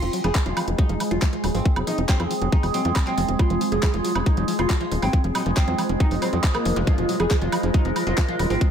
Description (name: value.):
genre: psychedelic trance.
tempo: 138 BPM.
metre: 4/4.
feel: straight.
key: F phrygian.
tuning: A4 = 440 Hz.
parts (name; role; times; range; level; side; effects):
oud; melody; 0.0-8.7 s; Bb3 to Ab4; -27 LUFS; right 1 dB; phaser, sidechain pumping, tape echo.
overtone-sweeping drone; sustained chords; 0.0-8.7 s; Ab3 to Bb4; -28 LUFS; right 1 dB; chorus, built-in reverb, phaser, sidechain pumping.
overdriven acid bass; riff; 0.0-8.7 s; Eb3 to Gb3; -30 LUFS; equal; distortion, auto-pan, sidechain pumping, tape echo.
tight sequencer bass; bass; 0.0-8.6 s; Eb1 to F2; -25 LUFS; equal; none.
garage drum kit; drums; 0.0-8.7 s; handclaps, hi-hat, woodblock; -30 LUFS; right 1 dB; overdrive.
warbly tape-like pad; texture; 0.6-8.7 s; F4 to C6; -33 LUFS; right 1 dB; chorus, built-in reverb, sidechain pumping.
electronic kick drum; drums; 0.3-8.7 s; none; -20 LUFS; equal; overdrive.
zap; sound effects; 6.8-6.9 s; none; -34 LUFS; equal; none.
room: light reverb, digital ambience.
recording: none.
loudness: -19 LUFS.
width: side -8 dB against mid.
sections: 0.0-8.7 A section.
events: none.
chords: 0.0 F5.